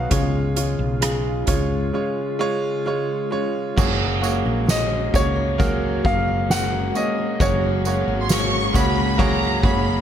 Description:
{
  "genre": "pop ballad",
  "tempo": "66 BPM",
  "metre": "4/4",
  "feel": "straight",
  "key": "F# major",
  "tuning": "A4 = 440 Hz",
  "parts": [
    { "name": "warm concert grand piano", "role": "melody", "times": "0.0-10.0 s", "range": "C#5 to F#5", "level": "-26 LUFS", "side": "equal", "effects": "none" },
    { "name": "clear grand piano", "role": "accompaniment", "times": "0.0-10.0 s", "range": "C#3 to C#5", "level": "-24 LUFS", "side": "right 2 dB", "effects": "none" },
    { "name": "glassy FM pad", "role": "sustained chords", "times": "0.0-10.0 s", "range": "A#2 to F#4", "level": "-29 LUFS", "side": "equal", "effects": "ensemble chorus, built-in reverb" },
    { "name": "fingerpicked steel-string acoustic guitar", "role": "arpeggios", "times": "0.0-10.0 s", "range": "B2 to C#5", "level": "-30 LUFS", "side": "left 8 dB", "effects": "none" },
    { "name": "woody fretless electric bass", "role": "bass", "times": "0.0-10.0 s", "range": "F#1 to C#2", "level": "-24 LUFS", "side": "equal", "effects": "none" },
    { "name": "soft-mallet drum kit", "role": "drums", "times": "0.1-9.8 s", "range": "crash cymbal, hi-hat, kick drum, ride cymbal, rim click, snare drum", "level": "-23 LUFS", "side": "equal", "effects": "none" },
    { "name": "tambourine", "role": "percussion", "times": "3.8-9.0 s", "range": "none", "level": "-32 LUFS", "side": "right 11 dB", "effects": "none" },
    { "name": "warm symphonic violin section", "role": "second line", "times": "8.2-10.0 s", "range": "A#5 to C#6", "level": "-23 LUFS", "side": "equal", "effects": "ping-pong delay" }
  ],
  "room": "studio reverb",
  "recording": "none",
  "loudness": "-18 LUFS",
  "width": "side -9 dB against mid",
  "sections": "0.0-3.8 A section; 3.8-10.0 B section",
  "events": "break 1.9-3.8",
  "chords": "0.1 C#; 3.8 F#add9",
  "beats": "| 0.11 1.02 1.94 2.86 | 3.78 4.68 5.59 6.50 | 7.40 8.30 9.19"
}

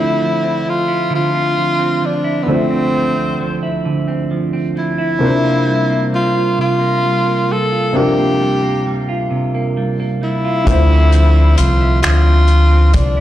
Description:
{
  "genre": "slow six-eight R&B",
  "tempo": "44 BPM (dotted quarters)",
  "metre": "6/8",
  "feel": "straight",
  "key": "D minor",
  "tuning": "A4 = 437 Hz",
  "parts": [
    { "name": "breathy tenor saxophone", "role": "melody", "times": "0.0-13.2 s", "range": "B3 to A4", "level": "-17 LUFS", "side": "left 1 dB", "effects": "tape echo" },
    { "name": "clean electric guitar", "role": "second line", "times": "0.0-13.2 s", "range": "C3 to F4", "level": "-19 LUFS", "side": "right 2 dB", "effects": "phaser" },
    { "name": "clear concert grand piano", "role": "accompaniment", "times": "0.0-13.2 s", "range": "C3 to E5", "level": "-21 LUFS", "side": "equal", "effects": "none" },
    { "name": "deep dub fingered electric bass", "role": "bass", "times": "10.7-13.2 s", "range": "C2 to D2", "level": "-10 LUFS", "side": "equal", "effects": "none" },
    { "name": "warm soul drum kit", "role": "drums", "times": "10.7-13.2 s", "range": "finger snaps, hi-hat, kick drum", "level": "-17 LUFS", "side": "equal", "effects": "none" }
  ],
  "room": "light reverb",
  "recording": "played on a big sound system in a bare room, stone room reverb",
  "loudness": "-12 LUFS",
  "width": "side -13 dB against mid",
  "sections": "0.0-13.2 A section",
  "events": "none",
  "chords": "0.0 Dm9; 5.2 C7sus4; 10.7 Dm9",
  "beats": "1.12 | 2.49 3.85 | 5.21 6.58 | 7.94 9.31 | 10.67 12.03"
}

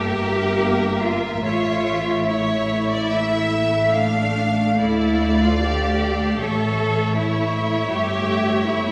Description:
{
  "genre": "classical, slow romantic movement for string orchestra",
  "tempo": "70-81 BPM",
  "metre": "4/4",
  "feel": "rubato",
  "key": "unclear",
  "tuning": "A4 = 438 Hz",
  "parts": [
    { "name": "warm symphonic violin section", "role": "melody", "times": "0.0-8.9 s", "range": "E5 to F5", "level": "-31 LUFS", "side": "equal", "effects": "none" },
    { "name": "clear symphonic violin section", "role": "second line", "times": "0.0-8.9 s", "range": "Bb4 to F5", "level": "-28 LUFS", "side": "equal", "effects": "none" },
    { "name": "clear symphonic viola section", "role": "accompaniment", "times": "0.0-8.9 s", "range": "A3 to Bb3", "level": "-26 LUFS", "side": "equal", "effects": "none" },
    { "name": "clear symphonic cello section", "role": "bass", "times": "0.0-8.9 s", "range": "D4 to A4", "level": "-26 LUFS", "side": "equal", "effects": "none" },
    { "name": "rich symphonic double bass section", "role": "bass", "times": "0.0-8.9 s", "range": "G1 to D2", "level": "-28 LUFS", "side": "equal", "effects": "none" }
  ],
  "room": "wet scoring stage reverb, RT60 1.8 s",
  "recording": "recorded in a church or concert hall, small room ambience",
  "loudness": "-20 LUFS",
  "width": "mono",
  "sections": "0.0-8.9 A section",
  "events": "none",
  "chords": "0.0 Edim/G; 1.4 A; 4.8 Dm; 6.4 A; 7.9 A7/G",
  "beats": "0.61 | 1.44 2.27 3.12 3.96 | 4.80 5.62 6.41 7.18 | 7.93 8.68"
}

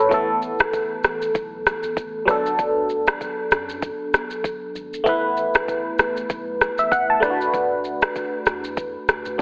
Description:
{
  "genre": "afrobeats",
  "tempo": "97 BPM",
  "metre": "4/4",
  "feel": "swing 58% on 16ths",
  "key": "unclear",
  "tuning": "A4 = 440 Hz",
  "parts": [
    { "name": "barking FM electric piano", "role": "accompaniment", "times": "0.0-9.4 s", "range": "E3 to A5", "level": "-24 LUFS", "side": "equal", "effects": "phaser" },
    { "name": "punchy sub bass", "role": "bass", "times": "0.1-9.4 s", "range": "G#1 to F#2", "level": "-44 LUFS", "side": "equal", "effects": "none" },
    { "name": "afro-pop drum kit", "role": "drums", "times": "0.1-9.4 s", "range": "kick drum, rim click, shaker", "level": "-24 LUFS", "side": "equal", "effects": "none" }
  ],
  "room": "moderate plate reverb, RT60 1.9 s",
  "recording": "heavily compressed radio sound, low-pass filter, telephone sound",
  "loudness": "-22 LUFS",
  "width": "mono",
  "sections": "0.1-9.4 A section",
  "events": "none",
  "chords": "0.1 Asus2; 2.3 D6; 5.1 Asus2; 7.2 D6",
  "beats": "| 0.11 0.73 1.35 1.97 | 2.59 3.21 3.83 4.44 | 5.06 5.68 6.30 6.92 | 7.54 8.15 8.77 9.39"
}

